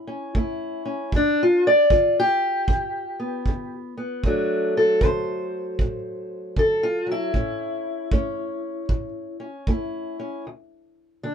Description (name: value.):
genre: acoustic country blues, solo or duo.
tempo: 77 BPM.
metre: 4/4.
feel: swing 63% on 8ths.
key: unclear.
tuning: A4 = 440 Hz.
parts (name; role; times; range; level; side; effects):
fingerpicked steel-string acoustic guitar; melody; 0.0-11.3 s; D2 to D5; -22 LUFS; left 1 dB; none.
kick drum; drums; 0.3-9.9 s; none; -24 LUFS; right 1 dB; none.
room: moderate booth ambience, RT60 0.2 s.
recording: minimal, uncompressed stereo recording.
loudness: -21 LUFS.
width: side -7 dB against mid.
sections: 0.0-10.5 A section.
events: steel-string acoustic guitar solo 0.0-10.5.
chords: 0.0 A7; 1.1 G7; 4.2 D7; 7.4 A; 10.5 N.C..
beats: 0.36 | 1.14 1.92 2.69 3.47 | 4.25 5.03 5.80 6.58 | 7.36 8.13 8.91 9.69 | 10.47 11.25.